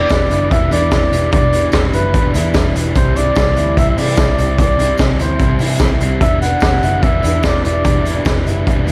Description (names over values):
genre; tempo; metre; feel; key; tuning
jangly indie pop; 147 BPM; 4/4; straight; E minor; A4 = 440 Hz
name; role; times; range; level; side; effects
warm flugelhorn; melody; 0.0-8.2 s; B4 to F#5; -21 LUFS; equal; none
crunchy overdriven guitar; accompaniment; 0.0-8.9 s; C3 to C5; -25 LUFS; equal; none
electric guitar through a small old amp; arpeggios; 0.0-8.9 s; E2 to E4; -26 LUFS; equal; ensemble chorus
vintage muted picked electric bass; bass; 0.0-8.9 s; E1 to C3; -21 LUFS; equal; none
raw garage drum kit; drums; 0.1-8.9 s; hi-hat, kick drum, snare drum; -18 LUFS; equal; none
tambourine; percussion; 0.1-8.9 s; none; -42 LUFS; equal; none
room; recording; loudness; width
moderate large studio reverb, RT60 1.1 s, small room ambience; none; -14 LUFS; mono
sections
0.0-8.9 A section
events
none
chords
0.0 Em7; 3.0 C; 6.2 Em7